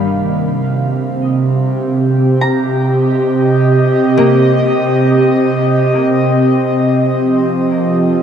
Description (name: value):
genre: ambient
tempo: 51 BPM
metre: 3/4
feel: straight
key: unclear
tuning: A4 = 440 Hz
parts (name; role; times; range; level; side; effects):
- airy breathy pad; sustained chords; 0.0-8.2 s; C3 to F5; -11 LUFS; right 1 dB; chorus
- concert harp; arpeggios; 2.4-7.4 s; Bb3 to Bb5; -24 LUFS; left 2 dB; diffuse ambient delay, shimmer reverb
room: wet cathedral reverb, RT60 6.1 s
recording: none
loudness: -11 LUFS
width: side -8 dB against mid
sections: 0.1-8.2 A section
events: none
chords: 0.1 Cm; 7.1 F